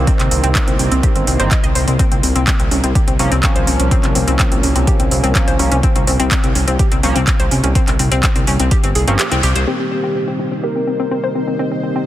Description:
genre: melodic techno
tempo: 125 BPM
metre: 4/4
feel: straight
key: C phrygian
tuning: A4 = 440 Hz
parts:
  - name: sync-sweep polysynth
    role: stabs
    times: 0.0-12.1 s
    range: Eb3 to Db4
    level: -23 LUFS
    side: right 2 dB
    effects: chorus, sidechain pumping, digital delay
  - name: fat analog bass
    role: bass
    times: 0.0-9.7 s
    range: G1 to C2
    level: -17 LUFS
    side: equal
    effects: sidechain pumping
  - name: bowed-like drone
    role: drone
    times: 0.0-12.1 s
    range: Bb2 to C5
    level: -29 LUFS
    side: left 1 dB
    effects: built-in reverb, sidechain pumping
  - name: analog pluck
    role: arpeggios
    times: 0.1-12.0 s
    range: C4 to Eb5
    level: -21 LUFS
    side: left 2 dB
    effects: chorus, sidechain pumping, digital delay
  - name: electronic kick drum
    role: drums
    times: 0.1-8.8 s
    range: none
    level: -16 LUFS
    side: equal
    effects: none
  - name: house drum kit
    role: drums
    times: 0.1-9.7 s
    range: handclaps, hi-hat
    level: -21 LUFS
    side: right 1 dB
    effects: sidechain pumping on hats, low-pass filter on hats, soft clipping on snare, low-pass filter on snare, low-pass filter on room
  - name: wide unison lead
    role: melody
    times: 9.7-12.0 s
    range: G4 to Bb4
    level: -21 LUFS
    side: equal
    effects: sidechain pumping, dub echo
  - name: dark analog pad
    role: sustained chords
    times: 9.7-12.1 s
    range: C4 to Eb5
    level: -25 LUFS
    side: left 2 dB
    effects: chorus, sidechain pumping
room: light reverb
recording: dense, heavily limited modern master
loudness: -13 LUFS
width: side -13 dB against mid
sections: 0.0-9.7 A section; 9.7-12.1 B section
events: filter sweep on synth arpeggio sound 0.0-9.7, 9.7-12.1; kick drops out 9.2-9.7; band accent 9.2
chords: 0.0 Cm7; 2.0 Bbm/C; 9.7 Cm7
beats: | 0.07 0.55 1.03 1.51 | 1.99 2.47 2.95 3.43 | 3.91 4.39 4.87 5.35 | 5.83 6.31 6.79 7.27 | 7.75 8.23 8.71 9.19 | 9.67 10.15 10.63 11.11 | 11.59

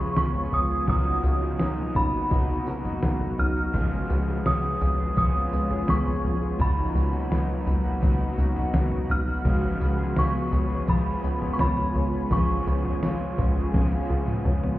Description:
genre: dream pop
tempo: 84 BPM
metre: 4/4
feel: straight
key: Db mixolydian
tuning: A4 = 440 Hz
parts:
  - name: synth chime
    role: melody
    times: 0.0-14.4 s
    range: Cb6 to F6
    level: -30 LUFS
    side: equal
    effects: ensemble chorus, tremolo, ping-pong delay
  - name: crunchy overdriven guitar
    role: accompaniment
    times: 0.0-14.8 s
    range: Db3 to Bb4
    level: -32 LUFS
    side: right 1 dB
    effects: harmonic tremolo, wide subtle chorus
  - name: granular cloud pad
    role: sustained chords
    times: 0.0-14.8 s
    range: F4 to Cb6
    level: -34 LUFS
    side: right 1 dB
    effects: built-in reverb
  - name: picked twelve-string acoustic guitar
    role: arpeggios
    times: 0.0-14.8 s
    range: F3 to Ab4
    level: -31 LUFS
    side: left 2 dB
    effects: wide subtle chorus, ping-pong delay
  - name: plucky analog bass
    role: bass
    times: 0.0-14.8 s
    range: Db2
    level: -26 LUFS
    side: equal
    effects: none
  - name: detuned 8-bit digital drum machine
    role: drums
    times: 0.2-14.8 s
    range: kick drum, snare drum, tambourine, toms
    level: -28 LUFS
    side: equal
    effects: none
room: light reverb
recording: heard muffled through a wall, club reverb, EQ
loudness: -22 LUFS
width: side -16 dB against mid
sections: 0.0-14.8 A section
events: drum fill 13.7-14.8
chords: 0.0 Db7; 0.9 Cbmaj7/Db; 3.7 Db7; 6.6 Cbmaj7/Db; 9.5 Db7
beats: 0.17 | 0.88 1.60 2.31 3.02 | 3.74 4.45 5.17 5.88 | 6.60 7.31 8.03 8.74 | 9.45 10.17 10.88 11.60 | 12.31 13.03 13.74 14.45

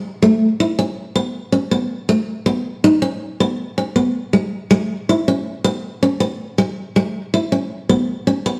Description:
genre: highlife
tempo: 107 BPM (dotted quarters)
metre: 12/8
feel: straight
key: E major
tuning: A4 = 440 Hz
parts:
  - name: picked steel-string acoustic guitar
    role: solo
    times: 0.2-8.6 s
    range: G#3 to E4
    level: -18 LUFS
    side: equal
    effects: none
room: wet stone room reverb, RT60 1.4 s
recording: band playing live in one room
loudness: -19 LUFS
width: mono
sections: 0.0-8.6 A section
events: none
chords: none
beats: | 0.04 0.60 1.17 1.73 | 2.29 2.85 3.41 3.97 | 4.54 5.10 5.66 6.22 | 6.78 7.33 7.89 8.45

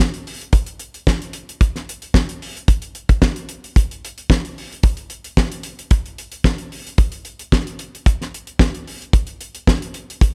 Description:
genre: disco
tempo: 112 BPM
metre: 4/4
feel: straight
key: none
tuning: none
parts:
  - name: damped 70s drum kit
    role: drums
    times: 0.1-10.3 s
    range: hi-hat, kick drum, snare drum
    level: -19 LUFS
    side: equal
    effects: none
room: little or no reverb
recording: none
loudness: -20 LUFS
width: mono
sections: 0.0-10.3 A section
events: none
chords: none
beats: 0.00 | 0.53 1.07 1.61 2.15 | 2.68 3.22 3.76 4.30 | 4.83 5.37 5.91 6.45 | 6.98 7.52 8.06 8.60 | 9.14 9.68 10.21

